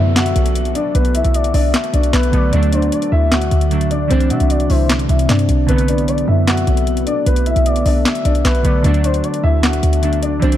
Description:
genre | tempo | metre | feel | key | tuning
hip hop, trap | 152 BPM | 4/4 | half-time | B phrygian | A4 = 440 Hz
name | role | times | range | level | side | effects
dark concert grand piano | melody | 0.0-10.6 s | B3 to F#5 | -21 LUFS | left 1 dB | none
gliding portamento lead | second line | 0.0-10.4 s | B4 to E5 | -25 LUFS | left 6 dB | chorus, tape echo
glassy digital keys | accompaniment | 0.0-10.6 s | D3 to D4 | -22 LUFS | right 3 dB | chorus
deep dark ambient pad | sustained chords | 0.0-10.6 s | C3 to D5 | -24 LUFS | left 1 dB | chorus, built-in reverb
short 808-style bass | bass | 0.0-10.6 s | B1 to C3 | -15 LUFS | equal | none
downlifter | sound effects | 0.0-2.5 s | none | -35 LUFS | equal | none
trap drum kit | drums | 0.2-10.6 s | handclaps, hi-hat, snare drum | -21 LUFS | equal | none
room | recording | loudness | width
digital ambience | dark, warm production | -13 LUFS | side -12 dB against mid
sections
0.0-10.6 A section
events
none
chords
0.0 Bm7; 2.5 D; 4.1 Cadd9; 5.7 Bm7; 8.8 D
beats
0.16 0.55 | 0.95 1.34 1.74 2.13 | 2.53 2.92 3.32 3.71 | 4.11 4.50 4.90 5.29 | 5.69 6.08 6.47 6.87 | 7.26 7.66 8.05 8.45 | 8.84 9.24 9.63 10.03 | 10.42

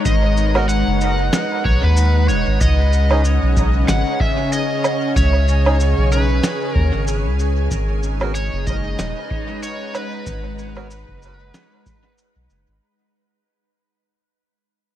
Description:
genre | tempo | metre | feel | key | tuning
ambient dub | 94 BPM | 4/4 | swing 57% on 16ths | unclear | A4 = 439 Hz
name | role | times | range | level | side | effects
soft additive organ-like pad | sustained chords | 0.0-12.8 s | C#3 to A#5 | -23 LUFS | equal | ensemble chorus, built-in reverb
overdriven slide guitar | melody | 0.1-12.1 s | B4 to F#5 | -24 LUFS | equal | dub echo
soft dub sub bass | bass | 0.1-12.8 s | D#1 to D#2 | -17 LUFS | equal | tube saturation
electronic cabasa, woodblock and snare drum | drums | 0.1-12.6 s | none | -25 LUFS | right 2 dB | studio reverb, dub echo
electronic kick drum | drums | 0.1-12.0 s | none | -22 LUFS | equal | studio reverb
melodica | stabs | 0.6-10.9 s | B3 to A#4 | -30 LUFS | right 2 dB | none
room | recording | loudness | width
light reverb, digital ambience | vinyl crackle | -15 LUFS | side -12 dB against mid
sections
0.0-12.8 A section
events
fade-out 6.0-12.8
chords
0.0 G#m7; 2.6 C#sus2; 7.7 G#m7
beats
| 0.05 0.69 1.33 1.97 | 2.60 3.24 3.88 4.52 | 5.16 5.80 6.43 7.07 | 7.71 8.35 8.99 9.63 | 10.27 10.90 11.54 12.18

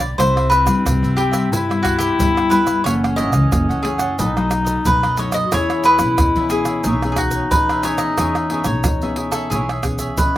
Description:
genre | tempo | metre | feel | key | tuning
samba and choro | 90 BPM | 4/4 | straight | E major | A4 = 440 Hz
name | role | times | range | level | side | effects
cavaquinho | melody | 0.0-10.4 s | F#4 to D#5 | -20 LUFS | equal | slapback echo
cavaquinho | accompaniment | 0.0-10.3 s | D#4 to F#5 | -28 LUFS | right 3 dB | slapback echo
nylon-string guitar | accompaniment | 0.0-10.4 s | F#2 to G#4 | -25 LUFS | left 3 dB | none
upright bass | bass | 0.0-10.4 s | F#1 to E3 | -22 LUFS | equal | none
mellow clarinet | second line | 0.2-10.4 s | C4 to F#4 | -22 LUFS | left 3 dB | slapback echo
egg shaker, surdo, pandeiro and tamborim | percussion | 0.2-10.3 s | none | -23 LUFS | right 2 dB | none
room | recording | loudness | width
little or no reverb | recorded outdoors, with no room sound | -15 LUFS | side -14 dB against mid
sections
0.0-10.4 A section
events
none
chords
0.2 Cmaj7; 2.9 F#m7; 4.2 B7; 5.5 E6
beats
| 0.19 0.86 1.52 2.19 | 2.86 3.52 4.19 4.86 | 5.52 6.19 6.85 7.52 | 8.19 8.85 9.52 10.19

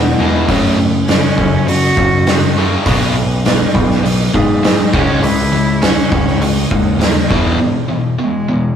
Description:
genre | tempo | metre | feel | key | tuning
quiet-loud alternative rock | 101 BPM | 4/4 | straight | unclear | A4 = 439 Hz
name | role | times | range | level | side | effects
electric guitar at the edge of break-up | arpeggios | 0.0-0.5 s | E3 to B3 | -20 LUFS | left 4 dB | phaser
sludgy distorted guitar | riff | 0.0-8.8 s | E2 to C#4 | -17 LUFS | left 1 dB | overdrive
growling picked electric bass | bass | 0.0-7.6 s | B1 to G#2 | -16 LUFS | equal | overdrive
warm cello | melody | 0.2-8.8 s | G#3 to F#4 | -19 LUFS | right 1 dB | none
oversized low-tuned drum kit | drums | 0.5-7.4 s | hi-hat, kick drum, snare drum | -15 LUFS | equal | none
room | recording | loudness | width
light reverb | rough rehearsal-room recording | -11 LUFS | side -8 dB against mid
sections
0.0-8.8 A section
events
cello solo 0.0-8.8; break 7.6-8.8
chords
0.5 F#m; 2.9 B5; 4.9 C#m; 7.3 E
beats
| 0.49 1.08 1.68 2.27 | 2.86 3.46 4.05 4.64 | 5.23 5.83 6.42 7.01 | 7.60 8.19

